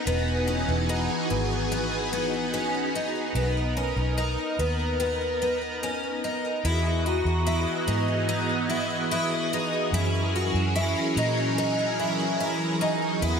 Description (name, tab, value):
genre	dream pop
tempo	73 BPM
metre	4/4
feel	straight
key	unclear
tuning	A4 = 440 Hz
part	string machine, violins	sustained chords	0.0-13.4 s	E3 to D#5	-27 LUFS	equal	phaser, ensemble chorus
part	picked twelve-string acoustic guitar	arpeggios	0.0-13.4 s	B3 to F#4	-28 LUFS	left 1 dB	analog chorus, digital delay
part	vintage muted fingered electric bass	bass	0.0-13.4 s	E1 to A#2	-28 LUFS	equal	none
part	vibraphone with soft mallets	texture	0.9-1.8, 7.1-12.9 s	F#5 to C#6	-38 LUFS	right 3 dB	stereo widening, digital delay
room	moderate lush hall reverb, RT60 1.9 s, studio reverb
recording	none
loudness	-24 LUFS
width	side -6 dB against mid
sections	0.0-6.6 A section; 6.6-13.4 B section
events	none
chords	0.1 Emaj7; 3.4 Bmaj7; 6.6 Emaj7; 9.9 F#9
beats	| 0.07 0.89 1.71 2.53 | 3.35 4.18 5.00 5.82 | 6.64 7.46 8.29 9.11 | 9.93 10.75 11.57 12.39 | 13.22